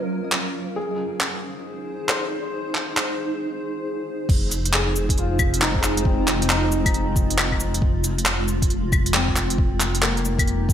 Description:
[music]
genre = future garage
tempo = 136 BPM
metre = 4/4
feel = swing 64% on 16ths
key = F minor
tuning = A4 = 440 Hz
[part]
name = felt-muted upright piano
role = accompaniment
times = 0.0-10.7 s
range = Bb3 to C5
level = -29 LUFS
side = left 2 dB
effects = sidechain pumping, ping-pong delay
[part]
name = granular cloud pad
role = sustained chords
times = 0.0-10.7 s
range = Gb3 to C5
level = -27 LUFS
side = right 1 dB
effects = built-in reverb, sidechain pumping
[part]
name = backwards swelling texture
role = texture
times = 0.0-3.4 s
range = F4 to F5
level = -41 LUFS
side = right 2 dB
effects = none
[part]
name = garage drum kit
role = drums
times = 0.3-10.7 s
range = cabasa, claves, crash cymbal, handclaps, hi-hat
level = -23 LUFS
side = equal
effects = gated reverb
[part]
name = dark detuned saw bass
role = bass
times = 4.3-10.7 s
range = F1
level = -24 LUFS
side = equal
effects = none
[part]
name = electronic kick drum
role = drums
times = 4.3-10.7 s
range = none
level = -22 LUFS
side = equal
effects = none
[sound]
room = moderate lush hall reverb, RT60 1.6 s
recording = bright 1980s-style digital production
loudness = -20 LUFS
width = side -10 dB against mid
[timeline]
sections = 0.0-4.3 A section; 4.3-10.7 B section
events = break 3.4-4.3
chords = 0.0 Gb; 0.8 Ab; 4.3 Fm7

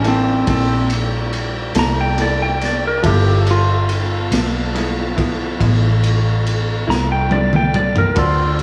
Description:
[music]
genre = slow blues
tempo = 47 BPM (dotted quarters)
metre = 12/8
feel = straight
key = G mixolydian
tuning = A4 = 440 Hz
[part]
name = clean lap steel guitar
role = melody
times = 0.0-8.6 s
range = C4 to Bb5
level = -22 LUFS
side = equal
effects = slapback echo
[part]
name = bright upright piano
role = accompaniment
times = 0.0-8.6 s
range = D4 to E6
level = -31 LUFS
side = equal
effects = slapback echo
[part]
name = electric guitar through a small old amp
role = accompaniment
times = 0.0-8.4 s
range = G2 to B4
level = -28 LUFS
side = equal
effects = tremolo, slapback echo
[part]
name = bright tonewheel organ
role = sustained chords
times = 0.0-8.6 s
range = E3 to A4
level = -30 LUFS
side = equal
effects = slow rotary speaker
[part]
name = vintage muted fingered electric bass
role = bass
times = 0.0-8.6 s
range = G1 to D2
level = -21 LUFS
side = equal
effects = none
[part]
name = crunchy breakbeat drum kit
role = drums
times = 0.0-8.6 s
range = kick drum, ride cymbal, snare drum, toms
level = -24 LUFS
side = equal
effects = none
[sound]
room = moderate lush hall reverb, RT60 2.7 s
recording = big arena sound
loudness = -17 LUFS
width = mono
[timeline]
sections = 0.0-8.6 A section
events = electric slide guitar solo 0.0-8.6; drum fill 6.9-8.2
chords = 0.0 C13; 3.0 G13

